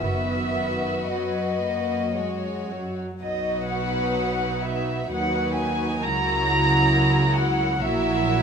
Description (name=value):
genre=classical, slow romantic movement for string orchestra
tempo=54-70 BPM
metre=3/4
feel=rubato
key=B major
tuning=A4 = 439 Hz
part: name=dark chamber violin section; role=melody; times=0.0-8.4 s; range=D#5 to A#5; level=-25 LUFS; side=equal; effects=none
part: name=dark studio violin section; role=second line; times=0.0-8.4 s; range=F#4 to C#5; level=-29 LUFS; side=left 2 dB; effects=none
part: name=rich studio viola section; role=accompaniment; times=0.0-8.4 s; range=D#3 to E4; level=-28 LUFS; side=equal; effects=none
part: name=warm studio cello section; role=bass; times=0.0-8.4 s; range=F#2 to D#3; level=-28 LUFS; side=right 2 dB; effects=none
part: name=warm studio double bass section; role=bass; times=0.0-8.4 s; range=F#1 to D#2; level=-30 LUFS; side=right 3 dB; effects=none
room=light reverb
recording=none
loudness=-21 LUFS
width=side -6 dB against mid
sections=0.0-3.2 A section; 3.2-8.4 B section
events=none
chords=0.0 B/F#; 2.2 F#5; 3.2 B; 6.0 F#7/C#